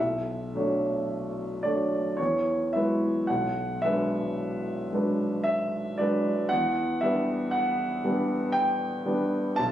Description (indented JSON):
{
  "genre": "classical, impressionist solo piano",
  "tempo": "54-59 BPM",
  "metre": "3/4",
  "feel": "rubato",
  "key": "unclear",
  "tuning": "A4 = 441 Hz",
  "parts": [
    { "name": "warm concert grand piano", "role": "solo", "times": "0.0-9.7 s", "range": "B1 to A5", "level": "-25 LUFS", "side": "equal", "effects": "none" }
  ],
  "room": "moderate recital hall reverb, RT60 1.6 s",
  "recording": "recorded on a phone in the room, club reverb",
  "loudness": "-25 LUFS",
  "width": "side -11 dB against mid",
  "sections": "0.0-9.7 A section",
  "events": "none",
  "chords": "0.0 Bm11; 2.2 E69; 3.3 Bm6; 6.5 Em9"
}